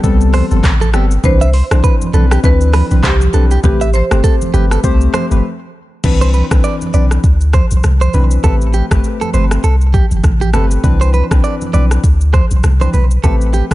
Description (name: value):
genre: afrobeats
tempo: 100 BPM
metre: 4/4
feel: swing 58% on 16ths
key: C major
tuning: A4 = 440 Hz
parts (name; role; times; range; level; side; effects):
- marimba with medium hard mallets; melody; 0.0-5.7 s; G4 to C5; -21 LUFS; right 1 dB; digital delay
- soft electric-piano-like synth keys; accompaniment; 0.0-13.7 s; E3 to C5; -19 LUFS; left 4 dB; chorus
- punchy sub bass; bass; 0.0-13.7 s; G1 to D2; -12 LUFS; equal; none
- afro-pop drum kit; drums; 0.0-13.7 s; crash cymbal, handclaps, hi-hat, kick drum, rim click, shaker; -15 LUFS; equal; none
- direct-recorded clean electric guitar; riff; 0.3-13.6 s; G4 to E5; -22 LUFS; right 6 dB; digital delay
- congas; percussion; 0.3-13.7 s; none; -23 LUFS; right 3 dB; none
room: digital ambience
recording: nothing above 10.5 kHz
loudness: -10 LUFS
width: side -16 dB against mid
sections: 0.0-6.0 A section; 6.0-13.7 B section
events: break 5.4-6.0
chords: 0.0 Am9; 1.2 Cmaj9; 3.6 Am9; 6.0 Cmaj9; 8.4 Am9; 10.8 Cmaj9; 13.2 Am9